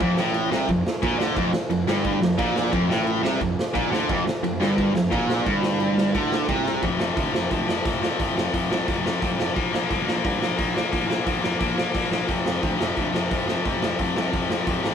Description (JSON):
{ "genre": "punk rock", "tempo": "176 BPM", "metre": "4/4", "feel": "straight", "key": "F major", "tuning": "A4 = 445 Hz", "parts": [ { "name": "distorted electric guitar", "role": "riff", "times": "0.0-14.9 s", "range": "F2 to Bb3", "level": "-24 LUFS", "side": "left 4 dB", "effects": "overdrive" }, { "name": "distorted electric guitar", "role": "riff", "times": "0.0-6.8 s", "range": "F2 to D3", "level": "-25 LUFS", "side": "right 6 dB", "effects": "overdrive" }, { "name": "fuzz picked electric bass", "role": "bass", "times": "0.0-14.9 s", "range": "F1 to Bb2", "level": "-32 LUFS", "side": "right 1 dB", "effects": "overdrive" }, { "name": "raw garage drum kit", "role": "drums", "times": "0.0-14.9 s", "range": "crash cymbal, hi-hat, kick drum, snare drum", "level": "-26 LUFS", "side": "right 1 dB", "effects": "none" } ], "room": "moderate stone room reverb, RT60 1.2 s", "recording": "rough rehearsal-room recording", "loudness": "-21 LUFS", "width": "side -8 dB against mid", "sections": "0.0-6.8 A section; 6.8-14.9 B section", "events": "drum fill 6.7", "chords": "0.0 F; 6.8 F5; 9.6 Bb5; 12.3 F5", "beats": "| 0.01 0.34 0.69 1.02 | 1.36 1.71 2.05 2.39 | 2.73 3.07 3.41 3.75 | 4.09 4.43 4.77 5.11 | 5.46 5.80 6.14 6.48 | 6.82 7.17 7.51 7.85 | 8.19 8.53 8.88 9.22 | 9.56 9.90 10.24 10.59 | 10.93 11.27 11.61 11.95 | 12.29 12.63 12.97 13.31 | 13.65 13.99 14.33 14.66" }